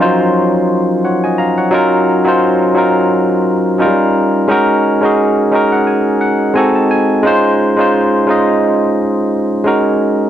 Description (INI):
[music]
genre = R&B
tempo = 87 BPM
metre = 4/4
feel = swing 56% on 16ths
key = Eb dorian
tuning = A4 = 441 Hz
[part]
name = barky tine electric piano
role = solo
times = 0.0-10.3 s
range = F3 to Bb5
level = -10 LUFS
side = equal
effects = none
[sound]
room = wet studio ambience, RT60 0.5 s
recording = dark, warm production, nothing above 10.9 kHz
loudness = -10 LUFS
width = side -10 dB against mid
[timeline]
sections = 0.0-1.7 A section; 1.7-10.3 A section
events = tine electric piano fill 5.2-7.2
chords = 0.0 Ebm9; 3.8 Eb9; 4.5 Ab9sus4; 6.6 Ab7b9; 7.2 Dbmaj9; 9.7 Ab9sus4